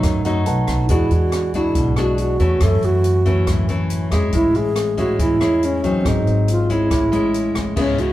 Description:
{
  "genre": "bossa nova",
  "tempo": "140 BPM",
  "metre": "4/4",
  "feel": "straight",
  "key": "A major",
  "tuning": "A4 = 440 Hz",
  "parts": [
    { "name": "wooden-headed alto flute", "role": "melody", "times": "0.0-8.1 s", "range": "C#4 to A4", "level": "-20 LUFS", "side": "right 1 dB", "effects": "plate reverb" },
    { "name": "mellow tine electric piano", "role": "accompaniment", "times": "0.0-7.8 s", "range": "A3 to A5", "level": "-29 LUFS", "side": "right 4 dB", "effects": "none" },
    { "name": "nylon-string guitar", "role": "accompaniment", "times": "0.0-8.1 s", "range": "F#2 to F#4", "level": "-21 LUFS", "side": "left 2 dB", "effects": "none" },
    { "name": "upright bass", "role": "bass", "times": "0.0-8.1 s", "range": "G#1 to F#2", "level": "-21 LUFS", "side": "equal", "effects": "none" },
    { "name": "open jazz drum kit", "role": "drums", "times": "0.0-8.1 s", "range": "crash cymbal, hi-hat, kick drum, rim click", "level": "-25 LUFS", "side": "equal", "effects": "none" }
  ],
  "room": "wet studio reverb, RT60 0.5 s",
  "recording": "heard from further back in the room",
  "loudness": "-15 LUFS",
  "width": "side -14 dB against mid",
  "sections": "0.0-7.8 A section",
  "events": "tine electric piano fill 0.0-0.9",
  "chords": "0.0 B7; 0.9 E9; 2.6 A6; 4.3 Amaj7; 6.0 G#7; 6.9 Amaj7"
}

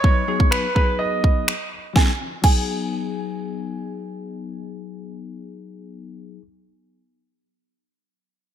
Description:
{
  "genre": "dance-pop",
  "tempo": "125 BPM",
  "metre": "4/4",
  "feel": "straight",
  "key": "G# minor",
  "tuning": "A4 = 440 Hz",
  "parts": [
    { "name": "clear concert grand piano", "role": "melody", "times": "0.0-6.4 s", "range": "B4 to G#5", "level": "-24 LUFS", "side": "right 3 dB", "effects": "lush chorus, low-pass filter, ping-pong delay" },
    { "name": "bell-like tine electric piano", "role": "accompaniment", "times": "0.0-6.4 s", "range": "F#3 to B4", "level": "-29 LUFS", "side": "left 7 dB", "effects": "analog chorus, low-pass filter" },
    { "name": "pop drum kit", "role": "drums", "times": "0.0-2.6 s", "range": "crash cymbal, finger snaps, kick drum, snare drum", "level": "-18 LUFS", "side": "equal", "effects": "gated reverb" },
    { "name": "downlifter", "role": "sound effects", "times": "0.0-2.0 s", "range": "none", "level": "-44 LUFS", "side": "right 3 dB", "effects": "none" }
  ],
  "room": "light reverb, digital ambience",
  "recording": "bright 1980s-style digital production",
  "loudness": "-19 LUFS",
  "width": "side -10 dB against mid",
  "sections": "0.0-2.0 A section; 2.0-5.8 B section",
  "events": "filter sweep 0.0-2.0",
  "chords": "0.0 G#m7"
}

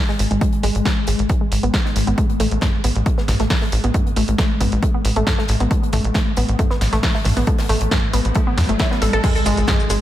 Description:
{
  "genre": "driving peak-time techno",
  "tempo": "136 BPM",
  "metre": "4/4",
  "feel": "straight",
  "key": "unclear",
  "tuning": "A4 = 440 Hz",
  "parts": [
    { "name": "wide unison pluck", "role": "riff", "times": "0.0-9.9 s", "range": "G#3 to A4", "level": "-23 LUFS", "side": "equal", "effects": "tube saturation, cassette tape, sidechain pumping, tape echo" },
    { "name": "swarming drone", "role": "drone", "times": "0.1-10.0 s", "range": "G#2 to G#3", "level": "-28 LUFS", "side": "left 2 dB", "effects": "none" },
    { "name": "modern studio drum kit", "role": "drums", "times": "0.1-10.0 s", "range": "hi-hat, snare drum", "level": "-34 LUFS", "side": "left 3 dB", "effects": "sidechain pumping on hats, high-pass filter on hats, high-pass filter on snare, high-pass filter on room" },
    { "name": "tight sequencer bass", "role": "bass", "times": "0.2-10.0 s", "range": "G1 to E2", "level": "-19 LUFS", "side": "equal", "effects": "sidechain pumping" },
    { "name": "punchy analog drum machine", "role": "drums", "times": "0.2-10.0 s", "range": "crash cymbal, hi-hat, shaker, snare drum, toms", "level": "-25 LUFS", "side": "right 1 dB", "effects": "none" },
    { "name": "electronic kick drum", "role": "drums", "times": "0.4-9.8 s", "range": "none", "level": "-20 LUFS", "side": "equal", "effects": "overdrive" },
    { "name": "riser and impact", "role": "sound effects", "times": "7.3-10.0 s", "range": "none", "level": "-28 LUFS", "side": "equal", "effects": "none" },
    { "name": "deep dark ambient pad", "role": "texture", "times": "9.2-10.0 s", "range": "none", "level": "barely audible", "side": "none", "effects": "none" }
  ],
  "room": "light reverb, digital ambience",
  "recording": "none",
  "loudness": "-16 LUFS",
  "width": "side -13 dB against mid",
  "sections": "0.0-9.2 A section",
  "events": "filter sweep on synth arpeggio sound 0.0-9.2; riser 7.3-9.2; impact 9.2-10.0",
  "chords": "0.0 N.C.; 2.2 A5; 9.2 G#5"
}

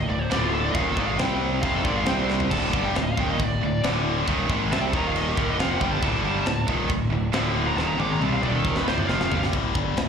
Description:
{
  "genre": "heavy metal",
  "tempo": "137 BPM",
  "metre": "4/4",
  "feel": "straight",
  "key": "D phrygian",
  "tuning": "A4 = 440 Hz",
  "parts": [
    { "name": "high-gain lead guitar", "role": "melody", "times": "0.0-9.4 s", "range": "F4 to D6", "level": "-29 LUFS", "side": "equal", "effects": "distortion, slapback echo, digital delay" },
    { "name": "tight distorted guitar", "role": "riff", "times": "0.0-10.1 s", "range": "D2 to C4", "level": "-28 LUFS", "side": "left 10 dB", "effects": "distortion, slapback echo" },
    { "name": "tight distorted guitar", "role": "riff", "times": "0.0-9.5 s", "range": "D2 to C4", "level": "-28 LUFS", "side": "right 11 dB", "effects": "distortion, slapback echo" },
    { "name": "fuzz fingered electric bass", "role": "bass", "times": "0.0-10.1 s", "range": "D1 to C2", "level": "-28 LUFS", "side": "equal", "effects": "overdrive" },
    { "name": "tight metal drum kit", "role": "drums", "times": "0.3-10.1 s", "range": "crash cymbal, kick drum, snare drum, toms", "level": "-28 LUFS", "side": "equal", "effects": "none" }
  ],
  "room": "little or no reverb",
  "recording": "live gig heard through the venue's PA, club reverb",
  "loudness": "-21 LUFS",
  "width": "side -7 dB against mid",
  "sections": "0.0-9.5 A section",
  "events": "lead electric guitar solo 0.0-9.5; drum fill 2.3, 7.8-9.5",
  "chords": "0.0 D5; 1.2 C5; 1.6 F7#9; 2.1 C5; 2.5 D5; 4.9 Eb5; 5.4 Dm; 8.4 Eb5; 8.9 Dm; 9.5 D5"
}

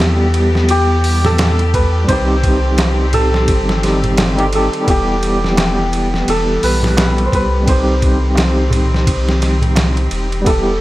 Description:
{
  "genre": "trip hop",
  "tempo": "86 BPM",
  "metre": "4/4",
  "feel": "swing 59% on 16ths",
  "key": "unclear",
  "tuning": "A4 = 440 Hz",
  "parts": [
    { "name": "santur", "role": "melody", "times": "0.0-10.8 s", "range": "G4 to C5", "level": "-19 LUFS", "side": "equal", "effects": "dub echo" },
    { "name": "overdriven tine electric piano", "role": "accompaniment", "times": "0.0-10.8 s", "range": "G3 to G4", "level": "-19 LUFS", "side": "equal", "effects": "fast tremolo, tape echo" },
    { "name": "clear symphonic string section", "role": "sustained chords", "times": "0.0-10.8 s", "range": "Eb3 to G4", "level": "-24 LUFS", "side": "left 1 dB", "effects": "none" },
    { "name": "warm sub bass", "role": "bass", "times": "0.0-10.8 s", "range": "E1 to E2", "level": "-16 LUFS", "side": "equal", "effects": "none" },
    { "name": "trip hop sampler-style drum kit", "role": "drums", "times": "0.0-10.7 s", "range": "hi-hat, kick drum, ride cymbal, snare drum", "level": "-18 LUFS", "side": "equal", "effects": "none" },
    { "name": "darbuka", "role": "percussion", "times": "1.2-9.9 s", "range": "none", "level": "-24 LUFS", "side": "right 2 dB", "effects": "none" }
  ],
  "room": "studio reverb",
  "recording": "none",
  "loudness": "-12 LUFS",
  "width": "side -16 dB against mid",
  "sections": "0.0-10.8 A section",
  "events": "none",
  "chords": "0.0 Em; 2.1 Cm; 4.9 Em; 7.7 Cm"
}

